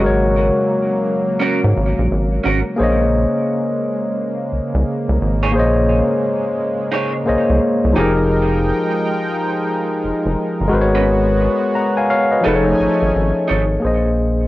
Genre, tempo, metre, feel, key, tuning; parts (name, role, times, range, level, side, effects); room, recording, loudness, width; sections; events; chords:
R&B, neo-soul; 87 BPM; 4/4; swing 63% on 16ths; Bb dorian; A4 = 441 Hz
barky tine electric piano; accompaniment; 0.0-14.5 s; F3 to Bb5; -17 LUFS; left 2 dB; cassette tape
warm analog pad; sustained chords; 0.0-13.8 s; Db3 to G#5; -23 LUFS; right 2 dB; chorus, tremolo, cassette tape
rubbery square bass; bass; 0.0-14.5 s; F1 to Ab2; -18 LUFS; equal
electric guitar through a small old amp; second line; 1.4-13.6 s; Db4 to Db5; -24 LUFS; right 4 dB; wide subtle chorus, cassette tape, analog delay
moderate spring reverb, RT60 2.6 s; home recording on cassette; -15 LUFS; side -17 dB against mid
0.0-2.8 A section; 2.8-13.8 B section
0.0 Ab9sus4; 2.8 Bbm11; 7.9 Fm11; 10.7 Abm11; 12.4 F7alt; 13.8 Bb9sus4